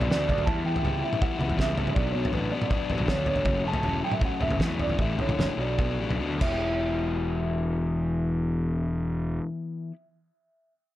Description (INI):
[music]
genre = indie rock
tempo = 137-161 BPM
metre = 4/4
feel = straight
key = E dorian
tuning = A4 = 440 Hz
[part]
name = mellow tine electric piano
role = melody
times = 0.0-9.4 s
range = B4 to A5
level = -32 LUFS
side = right 2 dB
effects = lush chorus
[part]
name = overdriven semi-hollow guitar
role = riff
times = 0.0-10.0 s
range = F#2 to G4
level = -30 LUFS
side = left 4 dB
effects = none
[part]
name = fuzz picked electric bass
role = bass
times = 0.0-9.4 s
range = E1 to E2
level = -29 LUFS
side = equal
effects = overdrive
[part]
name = cloth-damped thuddy drum kit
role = drums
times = 0.0-6.5 s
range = crash cymbal, kick drum, snare drum, toms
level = -28 LUFS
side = equal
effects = none
[sound]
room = light reverb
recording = dark, warm production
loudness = -24 LUFS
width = side -14 dB against mid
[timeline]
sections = 0.0-6.6 A section; 6.6-10.1 B section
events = slowing down 3.5-6.6; drum fill 6.2-6.6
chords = 0.5 Em; 2.0 Bm7; 3.5 F#m; 5.0 Asus4; 5.6 Bm; 6.4 Em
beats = 0.10 | 0.47 0.85 1.22 1.59 | 1.97 2.34 2.71 3.08 | 3.46 3.83 4.21 4.59 | 4.98 5.37 5.78 6.20 | 6.63 7.07 7.51 7.95 | 8.38 8.82 9.26 9.70